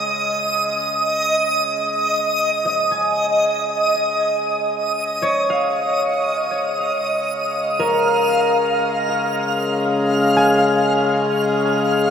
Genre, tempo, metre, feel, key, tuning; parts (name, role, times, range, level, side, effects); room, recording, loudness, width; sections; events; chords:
ambient; free time; Db major; A4 = 443 Hz
hand-pumped harmonium; drone; 0.0-12.1 s; Db3 to Ab3; -23 LUFS; left 2 dB
backwards swelling texture; texture; 0.0-12.1 s; Eb5 to F6; -19 LUFS; right 1 dB; built-in reverb
concert harp; arpeggios; 2.7-12.1 s; Bb4 to Ab5; -22 LUFS; equal; tape echo
wet shimmer reverb, RT60 7.1 s; -16 LUFS; side -8 dB against mid
0.0-6.9 A section; 6.9-12.1 B section
fade-out on harmonium 0.0-6.9
0.0 Dbadd9; 6.9 Db